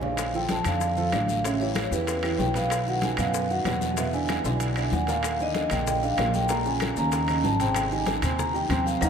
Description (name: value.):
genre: Afro-Cuban jazz.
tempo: 190 BPM.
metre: 4/4.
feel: straight.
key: unclear.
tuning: A4 = 440 Hz.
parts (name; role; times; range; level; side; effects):
vibraphone with soft mallets; melody; 0.0-9.1 s; B4 to Bb5; -27 LUFS; equal; analog delay.
warm grand piano; accompaniment; 0.0-9.1 s; Bb2 to D5; -29 LUFS; right 4 dB; lush chorus.
upright bass; bass; 0.0-9.1 s; Ab1 to F#2; -30 LUFS; left 1 dB; none.
bongos; percussion; 0.0-9.1 s; none; -37 LUFS; left 7 dB; none.
congas; percussion; 0.0-9.1 s; none; -34 LUFS; left 2 dB; none.
timbales; percussion; 0.0-9.1 s; none; -35 LUFS; right 4 dB; none.
claves; percussion; 0.2-9.1 s; none; -42 LUFS; left 8 dB; none.
guiro; percussion; 0.2-9.1 s; none; -41 LUFS; left 12 dB; none.
maracas; percussion; 0.2-9.1 s; none; -39 LUFS; left 13 dB; none.
room: wet cathedral reverb, RT60 6.3 s.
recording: dreamy mix soaked in reverb.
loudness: -23 LUFS.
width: side -7 dB against mid.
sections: 0.2-9.1 A section.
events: drum fill 0.0, 4.3-5.2.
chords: 0.2 Bbmaj7; 1.4 A9; 2.7 B; 4.0 E7; 5.2 Eb5; 6.5 Bbm7; 7.1 Abadd11; 7.8 Abmaj7.